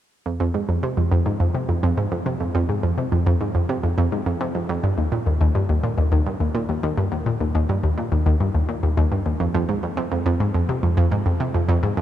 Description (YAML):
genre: ambient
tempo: 105 BPM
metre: 4/4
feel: straight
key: unclear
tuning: A4 = 436 Hz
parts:
  - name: analog pluck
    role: solo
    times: 0.3-12.0 s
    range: Eb2 to C3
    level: -19 LUFS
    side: equal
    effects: chorus, analog delay
room: moderate huge ambient reverb, RT60 8.4 s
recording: cassette tape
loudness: -19 LUFS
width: side -12 dB against mid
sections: 0.3-9.4 A section; 9.4-12.0 B section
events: none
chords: none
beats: | 0.26 0.83 1.40 1.97 | 2.54 3.12 3.69 4.26 | 4.83 5.40 5.97 6.54 | 7.12 7.69 8.26 8.83 | 9.40 9.97 10.54 11.12 | 11.69